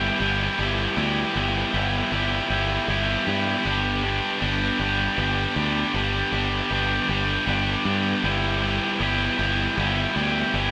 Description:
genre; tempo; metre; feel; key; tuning
post-rock; 52 BPM (dotted quarters); 6/8; straight; E minor; A4 = 441 Hz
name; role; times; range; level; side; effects
distorted electric guitar; riff; 0.0-10.7 s; G3 to G4; -24 LUFS; equal; overdrive
growling fingered electric bass; bass; 0.0-10.7 s; G1 to G2; -30 LUFS; equal; overdrive
room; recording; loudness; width
wet stone room reverb, RT60 1.3 s; band playing live in one room; -23 LUFS; mono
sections
0.0-10.7 A section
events
none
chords
0.0 Em/G; 3.6 G; 8.2 Em/G

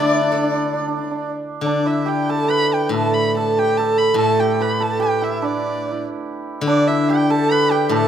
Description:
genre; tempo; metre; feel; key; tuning
chinese traditional, Chinese chamber ensemble; 95 BPM; 4/4; rubato; D zhi mode; A4 = 440 Hz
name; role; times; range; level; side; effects
dark erhu; melody; 0.0-8.1 s; D5 to B5; -22 LUFS; right 1 dB; none
breathy dizi; second line; 0.0-1.3 s; D5; -26 LUFS; left 6 dB; none
hammered dulcimer; second line; 0.0-8.1 s; D4 to D5; -20 LUFS; right 3 dB; none
steel-string zither; accompaniment; 0.0-8.1 s; A2 to A4; -22 LUFS; left 4 dB; none
room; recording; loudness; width
light reverb; close, detailed microphones; -16 LUFS; side -9 dB against mid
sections
0.0-1.6 A section; 1.6-8.1 B section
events
none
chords
none

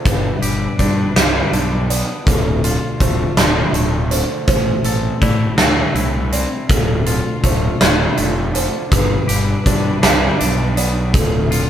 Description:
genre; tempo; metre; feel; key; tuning
post-rock; 54 BPM (dotted quarters); 6/8; straight; D dorian; A4 = 441 Hz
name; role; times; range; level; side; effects
clear studio string section; sustained chords; 0.0-11.7 s; D3 to B4; -30 LUFS; left 1 dB; none
felt-muted upright piano; arpeggios; 0.0-11.7 s; A4 to E5; -26 LUFS; right 5 dB; none
twangy electric guitar; arpeggios; 0.0-11.7 s; D2 to A4; -24 LUFS; left 3 dB; none
fuzz fingered electric bass; bass; 0.1-11.6 s; D1 to A2; -20 LUFS; equal; overdrive
big rock drum kit; drums; 0.1-11.7 s; hi-hat, kick drum, snare drum; -16 LUFS; equal; none
room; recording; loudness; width
light reverb; band playing live in one room; -14 LUFS; side -10 dB against mid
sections
0.0-11.7 A section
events
none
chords
0.0 G; 2.3 Dm; 4.5 Am7; 6.7 Dm; 8.9 G; 11.1 Dm

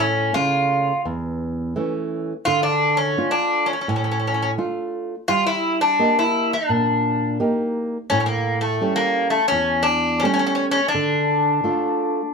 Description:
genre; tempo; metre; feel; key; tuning
greek folk, Greek bouzouki band; 85 BPM; 4/4; straight; D harmonic minor; A4 = 440 Hz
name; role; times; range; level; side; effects
Greek bouzouki; melody; 0.0-12.3 s; A3 to F4; -19 LUFS; left 2 dB; none
nylon-string guitar; accompaniment; 0.0-12.2 s; E2 to Eb5; -23 LUFS; right 3 dB; none
room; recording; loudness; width
moderate studio ambience, RT60 0.5 s; none; -18 LUFS; side -5 dB against mid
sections
0.0-12.3 A section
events
none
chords
0.0 A; 2.5 Dm; 5.3 Eb; 8.1 A7; 10.9 Dm

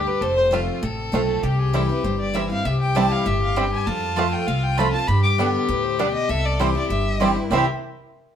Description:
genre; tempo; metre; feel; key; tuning
bluegrass; 198 BPM; 4/4; straight; C major; A4 = 441 Hz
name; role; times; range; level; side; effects
dark fiddle; melody; 0.0-7.7 s; G4 to D6; -27 LUFS; left 1 dB; none
clear fiddle; second line; 0.0-7.7 s; E4 to C5; -25 LUFS; left 4 dB; none
picked steel-string acoustic guitar; accompaniment; 0.0-7.6 s; F2 to G4; -26 LUFS; equal; none
upright bass; bass; 0.0-7.6 s; F1 to G2; -24 LUFS; equal; none
bluegrass banjo; melody; 0.5-7.7 s; G3 to G4; -27 LUFS; right 4 dB; none
mandolin; stabs; 3.0-7.6 s; B3 to A5; -26 LUFS; right 6 dB; none
room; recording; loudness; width
moderate studio reverb, RT60 1.0 s; band playing live in one room; -19 LUFS; side -8 dB against mid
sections
0.0-7.5 A section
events
none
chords
0.2 F; 1.4 C; 3.9 F; 5.1 G; 6.3 C

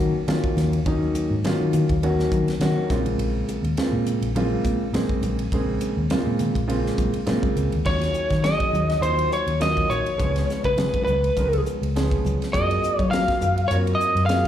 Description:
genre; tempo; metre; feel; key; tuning
electric jazz fusion; 103 BPM; 4/4; swing 54% on 16ths; Eb dorian; A4 = 440 Hz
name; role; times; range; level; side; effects
warm concert grand piano; accompaniment; 0.0-14.5 s; Db3 to Bb4; -25 LUFS; right 1 dB; slapback echo
fingered electric bass; bass; 0.0-14.5 s; Bb1 to Gb3; -24 LUFS; left 1 dB; none
crisp fusion drum kit; drums; 0.3-14.5 s; crash cymbal, hi-hat, kick drum, ride cymbal, snare drum; -29 LUFS; equal; none
congas; percussion; 0.3-14.4 s; none; -32 LUFS; left 2 dB; none
lightly driven lead guitar; melody; 7.9-14.5 s; Cb5 to F5; -23 LUFS; equal; slapback echo
room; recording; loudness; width
light reverb, small room ambience; live gig heard through the venue's PA, club reverb; -20 LUFS; side -10 dB against mid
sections
0.0-7.9 A section; 7.9-14.5 B section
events
none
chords
0.0 Ebm9; 2.9 Bbm9; 7.9 Ebm9; 10.2 Db7; 12.5 Gbmaj9#11

